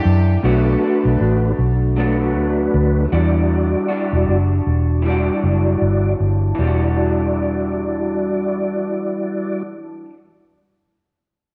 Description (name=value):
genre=indie pop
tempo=78 BPM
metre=4/4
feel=swing 60% on 16ths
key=E minor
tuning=A4 = 440 Hz
part: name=electric guitar through a small old amp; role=accompaniment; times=0.0-10.2 s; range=B2 to F#4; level=-26 LUFS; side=equal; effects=lush chorus, vibrato effect
part: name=vintage muted fingered electric bass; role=bass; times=0.1-9.6 s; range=E1 to F#2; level=-20 LUFS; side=equal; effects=tube saturation
part: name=mellow tonewheel organ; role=accompaniment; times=0.4-9.6 s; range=G3 to D5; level=-23 LUFS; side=equal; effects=chorus vibrato, slow rotary speaker, cassette tape
room=moderate echo chamber reverb, RT60 1.7 s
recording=none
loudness=-18 LUFS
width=mono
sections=0.4-6.6 A section; 6.6-9.7 B section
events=none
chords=0.4 Bm7; 3.1 Em9